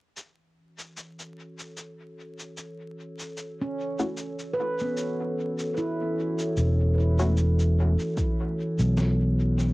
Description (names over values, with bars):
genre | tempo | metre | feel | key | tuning
ambient dub | 75 BPM | 4/4 | swing 55% on 16ths | unclear | A4 = 439 Hz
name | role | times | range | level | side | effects
warbly tape-like pad | sustained chords | 0.2-9.7 s | E3 to C#5 | -31 LUFS | equal | chorus, built-in reverb
electronic cabasa and snare drum | drums | 0.2-9.7 s | none | -38 LUFS | left 1 dB | small room ambience, cassette tape, dub echo
handpan | arpeggios | 3.6-7.6 s | B3 to B4 | -32 LUFS | right 2 dB | tape echo
filtered dub chord stab | stabs | 4.0-7.3 s | A3 to F#4 | -32 LUFS | left 2 dB | chorus, dub echo
fingered electric bass | bass | 6.6-9.7 s | E1 to B1 | -22 LUFS | equal | transformer saturation
electronic kick drum | drums | 8.2-8.3 s | none | -27 LUFS | equal | small room ambience, cassette tape
room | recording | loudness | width
light reverb | home recording on cassette, vinyl crackle | -23 LUFS | side -21 dB against mid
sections
0.2-6.6 A section; 6.6-9.7 B section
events
filter sweep on ambient pad 0.2-6.6; kick drops out 3.4-6.6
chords
0.2 F#m7/E